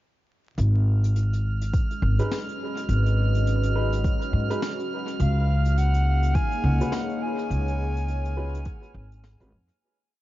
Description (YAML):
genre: ambient dub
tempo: 104 BPM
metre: 4/4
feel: swing 59% on 16ths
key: G# dorian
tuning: A4 = 440 Hz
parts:
  - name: deep dark ambient pad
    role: sustained chords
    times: 1.5-9.8 s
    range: G#3 to G#5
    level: -32 LUFS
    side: equal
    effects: chorus, built-in reverb
  - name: upright bass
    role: bass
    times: 0.6-9.7 s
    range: G#1 to G#2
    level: -22 LUFS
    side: equal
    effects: none
  - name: vintage brush drum kit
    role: drums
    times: 0.6-9.8 s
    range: hi-hat, snare drum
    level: -38 LUFS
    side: left 4 dB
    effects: dub echo
  - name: drifting glass-harmonics texture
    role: texture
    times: 1.0-9.8 s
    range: E#6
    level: -36 LUFS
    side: right 6 dB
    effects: chorus, built-in reverb
  - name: electronic kick drum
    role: drums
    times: 1.7-8.8 s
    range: none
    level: -25 LUFS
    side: equal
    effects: none
  - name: warm upright piano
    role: stabs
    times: 2.2-9.5 s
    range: G#3 to B4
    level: -36 LUFS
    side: right 1 dB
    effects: dub echo
  - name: bright reedy silver concert flute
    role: melody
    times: 5.2-9.2 s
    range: E#5 to G#5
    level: -32 LUFS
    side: left 2 dB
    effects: dub echo
room: small room ambience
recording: dark, warm production, vinyl crackle, nothing above 7.5 kHz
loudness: -22 LUFS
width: side -16 dB against mid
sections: 0.6-9.8 groove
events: fade-out 6.7-9.8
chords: 0.6 G#m; 5.2 C#